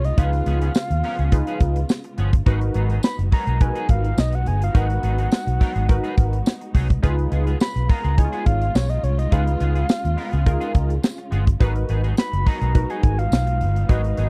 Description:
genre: early-eighties boogie funk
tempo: 105 BPM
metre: 4/4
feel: straight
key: G# dorian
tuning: A4 = 440 Hz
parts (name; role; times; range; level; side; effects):
- soft octave-layered synth lead; melody; 0.0-14.3 s; C#5 to B5; -31 LUFS; equal; chorus
- dark symphonic string section; sustained chords; 0.0-14.3 s; C#3 to E#5; -36 LUFS; equal; none
- clean electric guitar; riff; 0.0-14.3 s; E#3 to A#4; -36 LUFS; equal; analog chorus
- vintage muted fingered electric bass; bass; 0.0-14.3 s; F#1 to D#2; -23 LUFS; equal; none
- tight funk drum kit; drums; 0.0-14.3 s; hi-hat, kick drum, snare drum; -19 LUFS; equal; none
- funky polysynth comp; accompaniment; 0.2-14.3 s; D#4 to C#5; -31 LUFS; equal; chorus
- tambourine; percussion; 0.7-13.5 s; none; -41 LUFS; equal; none
room: little or no reverb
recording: dry, close 1970s-style studio recording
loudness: -21 LUFS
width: mono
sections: 0.0-14.3 A section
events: none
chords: 0.0 C#7; 2.5 G#m7; 7.0 C#7; 11.6 G#m7

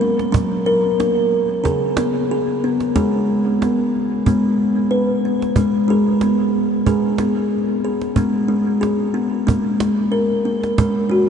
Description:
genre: world meditative, meditative tuned percussion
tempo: 92 BPM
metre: 4/4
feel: swing 54% on 16ths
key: G# minor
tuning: A4 = 439 Hz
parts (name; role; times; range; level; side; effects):
- kalimba; arpeggios; 0.0-11.3 s; C#3 to B4; -16 LUFS; equal; diffuse ambient delay
- cajon; percussion; 0.2-10.9 s; none; -24 LUFS; right 3 dB; none
room: wet huge ambient reverb, RT60 7.5 s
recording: in a vast, echoing space, cassette tape, nothing above 10.8 kHz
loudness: -16 LUFS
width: side -7 dB against mid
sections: 0.0-4.3 A section; 4.3-11.3 B section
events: none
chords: 0.0 F#; 1.6 C#5; 2.9 G#m; 9.5 N.C.

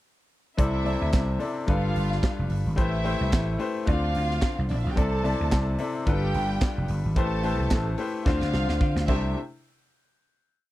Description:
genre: disco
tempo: 110 BPM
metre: 4/4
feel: swing 56% on 16ths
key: C major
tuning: A4 = 440 Hz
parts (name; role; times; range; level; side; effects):
- warm symphonic violin section; second line; 0.6-9.3 s; A3 to A5; -33 LUFS; right 2 dB; none
- clear baby grand piano; accompaniment; 0.6-9.4 s; C3 to D5; -29 LUFS; left 4 dB; none
- vintage slap bass; bass; 0.6-9.3 s; F1 to D3; -26 LUFS; equal; none
- modern studio drum kit; drums; 0.6-9.2 s; crash cymbal, handclaps, hi-hat, kick drum, snare drum; -26 LUFS; equal; none
room: little or no reverb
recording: dry, close 1970s-style studio recording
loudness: -23 LUFS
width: side -16 dB against mid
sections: 0.6-9.4 verse; 9.4-10.7 final hit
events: drum fill 8.3-9.4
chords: 0.6 C69; 1.7 G7; 2.8 Am7; 3.9 Dm7; 5.0 C69; 6.1 G7; 7.2 Am7; 8.3 Dm7; 9.1 C69; 9.4 N.C.

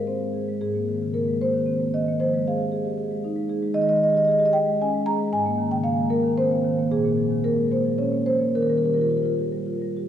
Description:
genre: classical, contemporary piece for solo marimba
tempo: 70-78 BPM (dotted quarters)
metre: 6/8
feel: rubato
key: unclear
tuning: A4 = 440 Hz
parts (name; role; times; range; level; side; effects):
- marimba with soft mallets; solo; 0.0-10.1 s; Ab2 to Bb5; -20 LUFS; equal; none
room: wet cathedral reverb, RT60 4.3 s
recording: heard from further back in the room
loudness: -20 LUFS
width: side -10 dB against mid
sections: 0.0-10.1 A section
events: none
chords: 0.0 Ab; 0.6 Abadd9; 2.2 Fm9; 3.8 Eb7sus4; 5.3 Abadd9; 6.9 Bbm7; 8.5 Ebadd9

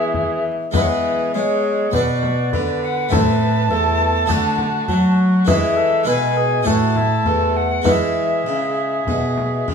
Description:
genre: classical, renaissance-style consort dance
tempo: 101 BPM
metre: 4/4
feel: straight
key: E mixolydian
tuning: A4 = 440 Hz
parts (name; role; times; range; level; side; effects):
- alto recorder; melody; 0.0-9.7 s; B4 to A5; -22 LUFS; left 3 dB; none
- mellow cor anglais; second line; 0.0-9.7 s; E4 to B4; -25 LUFS; right 4 dB; none
- harpsichord; accompaniment; 0.0-9.7 s; E2 to D5; -22 LUFS; equal; none
- rich cello; bass; 0.0-9.7 s; E2 to G#3; -20 LUFS; equal; none
- frame drum; percussion; 0.1-9.7 s; none; -23 LUFS; left 3 dB; none
room: wet stone room reverb, RT60 1.2 s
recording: none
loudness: -16 LUFS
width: side -6 dB against mid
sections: 0.7-9.7 A section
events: none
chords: 0.0 E; 1.9 Bm; 3.1 Am; 4.3 D; 5.5 E; 6.7 A; 7.9 E

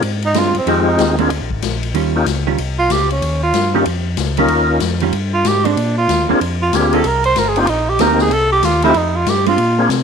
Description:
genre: soul jazz organ trio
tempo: 188 BPM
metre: 4/4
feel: swing 63% on 8ths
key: unclear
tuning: A4 = 439 Hz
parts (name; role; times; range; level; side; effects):
- percussive tonewheel organ; melody; 0.0-9.9 s; Ab3 to Bb4; -18 LUFS; left 3 dB; slow rotary speaker, overdrive, chorus vibrato
- mellow tonewheel organ; bass; 0.0-10.0 s; G1 to C3; -19 LUFS; equal; chorus vibrato, slow rotary speaker
- swinging big-band drum kit; drums; 0.0-10.0 s; hi-hat, kick drum, ride cymbal, snare drum; -23 LUFS; left 12 dB; none
- breathy tenor saxophone; melody; 0.3-9.9 s; C4 to C5; -16 LUFS; right 3 dB; none
- vintage hollow-body jazz guitar; accompaniment; 0.4-9.6 s; Eb3 to G4; -20 LUFS; right 12 dB; none
room: moderate plate reverb, RT60 1.1 s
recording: 1960s-style stereo with parts hard left and right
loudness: -13 LUFS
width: side -6 dB against mid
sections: 0.0-10.0 A section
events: tenor saxophone solo 0.0-10.0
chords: 0.0 Bb9 (rootless); 0.7 Fm7; 1.3 Bb7; 1.9 Eb9; 5.8 Bb9; 7.0 Cm7; 8.3 F9

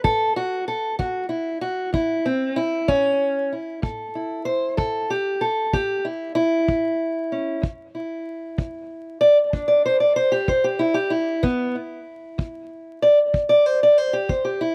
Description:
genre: acoustic country blues, solo or duo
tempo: 63 BPM (dotted quarters)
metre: 12/8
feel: straight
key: unclear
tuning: A4 = 440 Hz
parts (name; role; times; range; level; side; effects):
- fingerpicked steel-string acoustic guitar; melody; 0.0-14.7 s; E2 to D5; -22 LUFS; equal; slapback echo
- kick drum; drums; 0.0-14.4 s; none; -27 LUFS; equal; none
room: little or no reverb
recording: recorded outdoors, with no room sound, vinyl crackle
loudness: -22 LUFS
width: mono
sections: 0.0-14.7 A section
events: steel-string acoustic guitar solo 0.0-14.7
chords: 0.0 A5; 7.6 E7(no3)

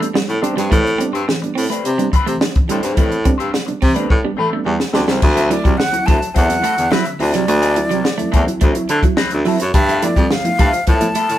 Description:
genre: funk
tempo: 106 BPM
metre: 4/4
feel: straight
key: unclear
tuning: A4 = 442 Hz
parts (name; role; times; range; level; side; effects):
- electric guitar at the edge of break-up; accompaniment; 0.0-11.3 s; F3 to C5; -23 LUFS; left 4 dB; wah
- electric guitar at the edge of break-up; riff; 0.0-11.3 s; F#3 to C4; -23 LUFS; right 6 dB; none
- reed electric piano; stabs; 0.0-11.4 s; G2 to E4; -23 LUFS; right 2 dB; fast tremolo
- compact cocktail drum kit; drums; 0.0-11.4 s; crash cymbal, hi-hat, kick drum, snare drum; -17 LUFS; equal; none
- clear baritone saxophone; bass; 0.1-11.4 s; C2 to A3; -19 LUFS; equal; none
- breathy jazz flute; melody; 5.2-11.4 s; D5 to A5; -20 LUFS; left 1 dB; none
room: moderate studio reverb, RT60 0.7 s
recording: band playing live in one room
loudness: -14 LUFS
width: side -12 dB against mid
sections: 0.0-5.2 A section; 5.2-11.4 B section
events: drum fill 4.1-5.2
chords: 0.0 Am11; 5.2 D9; 9.7 G13

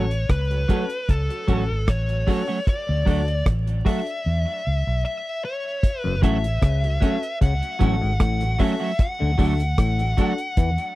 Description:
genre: roots reggae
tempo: 76 BPM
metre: 4/4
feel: straight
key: F# minor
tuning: A4 = 439 Hz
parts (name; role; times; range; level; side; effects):
- fuzz lead guitar; melody; 0.0-11.0 s; A4 to F#5; -28 LUFS; left 1 dB; distortion, tape echo
- semi-hollow electric guitar; accompaniment; 0.0-10.3 s; F#3 to F#4; -28 LUFS; right 4 dB; tape echo
- clear upright piano; stabs; 0.0-10.3 s; C#4 to A4; -30 LUFS; left 6 dB; none
- vintage muted fingered electric bass; bass; 0.0-10.8 s; F#1 to E2; -22 LUFS; equal; none
- deep reggae drum kit; drums; 0.1-11.0 s; hi-hat, kick drum, rim click; -20 LUFS; equal; none
- mellow clav; riff; 6.0-10.7 s; F#2 to E3; -27 LUFS; left 4 dB; none
room: little or no reverb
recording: dry, close 1970s-style studio recording, vinyl crackle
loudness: -20 LUFS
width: side -17 dB against mid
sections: 0.0-5.8 A section; 5.8-11.0 B section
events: break 4.3-5.8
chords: 0.0 F#m; 2.7 D; 4.3 E5; 5.8 F#m; 9.0 D

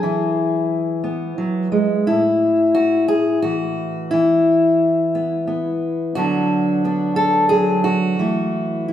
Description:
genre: folk, solo fingerstyle acoustic guitar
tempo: 88 BPM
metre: 3/4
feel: rubato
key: unclear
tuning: A4 = 440 Hz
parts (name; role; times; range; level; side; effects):
- fingerpicked steel-string acoustic guitar; solo; 0.0-8.9 s; A2 to A4; -16 LUFS; left 1 dB; none
room: wet recital hall reverb, RT60 1.6 s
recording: recorded in a church or concert hall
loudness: -16 LUFS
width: side -10 dB against mid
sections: 0.0-2.1 A section; 2.1-8.9 B section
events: none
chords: 0.0 E; 2.1 A5; 4.1 E5; 6.2 Bm/D; 8.2 Esus4

